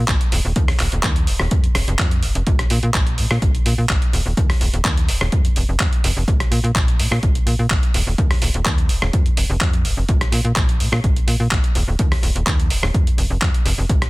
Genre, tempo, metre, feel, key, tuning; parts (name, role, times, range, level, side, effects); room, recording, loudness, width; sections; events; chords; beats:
filtered disco house; 126 BPM; 4/4; straight; A4 = 440 Hz
slap-like FM bass; bass; 0.0-14.1 s; Eb1 to Bb2; -20 LUFS; equal; sidechain pumping
dusty soul sampler-style drum kit; drums; 0.1-14.1 s; handclaps, hi-hat, rim click; -23 LUFS; equal; sidechain pumping on hats, small room ambience, soft clipping on snare
electronic kick drum; drums; 0.1-14.0 s; -18 LUFS; equal; small room ambience
little or no reverb; dense, heavily limited modern master; -16 LUFS; side -22 dB against mid
0.0-14.1 A section
0.09 | 0.56 1.04 1.51 1.99 | 2.47 2.94 3.42 3.90 | 4.37 4.85 5.32 5.80 | 6.28 6.75 7.23 7.71 | 8.18 8.66 9.13 9.61 | 10.09 10.56 11.04 11.51 | 11.99 12.47 12.94 13.42 | 13.89